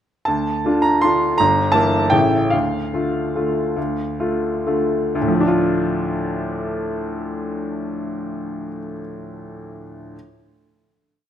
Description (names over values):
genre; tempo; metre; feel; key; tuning
classical, piano waltz; 118-172 BPM; 3/4; rubato; D minor; A4 = 440 Hz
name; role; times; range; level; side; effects
clear baby grand piano; solo; 0.3-10.2 s; G1 to C6; -18 LUFS; equal; none
room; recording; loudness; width
moderate recital hall reverb, RT60 1.6 s; close, detailed microphones; -18 LUFS; side -10 dB against mid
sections
0.3-5.2 A section; 5.2-8.0 final chord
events
slowing down 1.9-5.2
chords
0.3 Dm; 1.4 Edim/G; 2.1 A7; 2.5 Dm